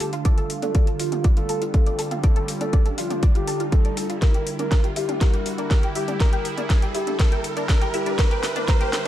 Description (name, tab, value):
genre	melodic techno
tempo	121 BPM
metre	4/4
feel	straight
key	D minor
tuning	A4 = 439 Hz
part	soft octave-layered synth lead	melody	0.0-9.1 s	F4 to Bb4	-28 LUFS	left 1 dB	chorus, phaser, sidechain pumping, tape echo
part	sweeping resonant pad	sustained chords	0.0-9.1 s	D3 to F4	-31 LUFS	right 2 dB	chorus, sidechain pumping
part	analog pluck	arpeggios	0.0-9.1 s	D4 to D5	-31 LUFS	equal	ensemble chorus, sidechain pumping, analog delay
part	deep house drum kit	drums	0.0-9.1 s	hi-hat, snare drum, toms	-30 LUFS	left 1 dB	overdrive, sidechain pumping on hats, high-pass filter on hats, small room ambience, sidechain pumping on toms, high-pass filter on toms, high-pass filter on snare
part	riser	sound effects	0.9-9.1 s	none	-33 LUFS	right 3 dB	none
part	electronic kick drum	drums	0.3-8.8 s	none	-18 LUFS	equal	small room ambience
room	light reverb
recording	dry, gritty hardware recording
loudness	-19 LUFS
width	side -12 dB against mid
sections	0.0-9.1 A section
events	build-up 0.0-9.1; filter sweep on synth pluck 0.0-9.1; riser 0.9-9.1; drum fill 4.2-9.1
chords	0.0 Dm; 4.2 Em7b5